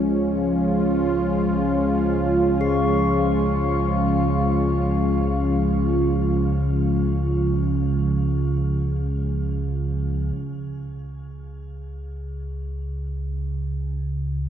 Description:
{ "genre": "dark ambient drone", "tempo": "free time", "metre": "none", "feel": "none", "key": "C# major", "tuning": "A4 = 439 Hz", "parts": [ { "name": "sweeping resonant pad", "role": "sustained chords", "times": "0.0-10.4 s", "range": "E#3 to E#4", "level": "-21 LUFS", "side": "equal", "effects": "chorus, shimmer reverb" }, { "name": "deep rumbling drone", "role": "drone", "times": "0.0-14.5 s", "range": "C#2 to C#3", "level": "-24 LUFS", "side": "right 2 dB", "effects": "built-in reverb, ensemble chorus" }, { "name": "bronze singing bowl", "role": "texture", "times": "2.6-10.4 s", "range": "G#4", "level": "-32 LUFS", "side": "left 4 dB", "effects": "shimmer reverb" } ], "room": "wet lush hall reverb, RT60 3.2 s", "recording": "dreamy mix soaked in reverb", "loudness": "-20 LUFS", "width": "side -9 dB against mid", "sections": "0.0-10.3 A section; 10.3-14.5 B section", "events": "fade-in on synth drone 0.0-10.3", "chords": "0.0 C#; 10.3 N.C." }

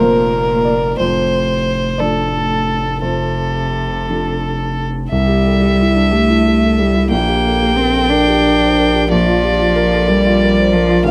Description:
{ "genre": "neoclassical piano and strings", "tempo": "60 BPM (dotted quarters)", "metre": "6/8", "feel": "rubato", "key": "unclear", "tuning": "A4 = 443 Hz", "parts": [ { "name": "rich violin", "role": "melody", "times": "0.0-11.1 s", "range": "A4 to G5", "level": "-20 LUFS", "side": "equal", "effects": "none" }, { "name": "rich cello", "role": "second line", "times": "0.0-11.1 s", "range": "A2 to D4", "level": "-20 LUFS", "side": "equal", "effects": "none" }, { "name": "warm grand piano", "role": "accompaniment", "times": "0.0-11.1 s", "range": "A1 to D5", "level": "-21 LUFS", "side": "equal", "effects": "none" }, { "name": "saturated sub bass", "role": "bass", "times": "0.0-11.1 s", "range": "F1 to C2", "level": "-22 LUFS", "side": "equal", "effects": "none" } ], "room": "light reverb", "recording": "recorded outdoors, with no room sound", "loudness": "-15 LUFS", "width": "mono", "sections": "0.0-5.1 A section; 5.1-11.1 B section", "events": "none", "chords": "0.0 Bb/F; 1.0 Dm7/F; 5.1 C; 7.1 Gm/Bb; 9.1 Bb" }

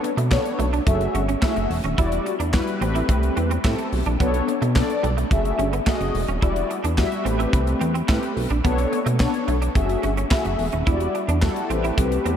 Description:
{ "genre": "early-eighties boogie funk", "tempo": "108 BPM", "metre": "4/4", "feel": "straight", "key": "E minor", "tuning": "A4 = 440 Hz", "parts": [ { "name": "mellow synth brass", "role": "accompaniment", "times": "0.0-12.4 s", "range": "G3 to E5", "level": "-24 LUFS", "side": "left 2 dB", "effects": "chorus, phaser" }, { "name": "semi-hollow electric guitar", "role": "riff", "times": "0.0-12.3 s", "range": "G3 to E4", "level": "-30 LUFS", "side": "right 6 dB", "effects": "ensemble chorus" }, { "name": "tight funk drum kit", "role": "drums", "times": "0.0-12.4 s", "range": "handclaps, hi-hat, kick drum, snare drum", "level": "-25 LUFS", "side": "equal", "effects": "none" }, { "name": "chorused synth bass", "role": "bass", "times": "0.2-12.4 s", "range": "D#1 to B2", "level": "-23 LUFS", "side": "equal", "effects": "none" } ], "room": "moderate cathedral reverb, RT60 5.6 s", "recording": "dreamy mix soaked in reverb", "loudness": "-19 LUFS", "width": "side -9 dB against mid", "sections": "0.0-12.4 A section", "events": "none", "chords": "0.0 Bm9; 0.9 F#m9; 2.0 Em9; 2.8 Am9; 4.2 Bm9; 5.3 F#m9; 6.4 Em9; 7.3 Am9; 8.6 Bm9; 9.8 F#m9; 10.9 Em9; 11.7 Am9" }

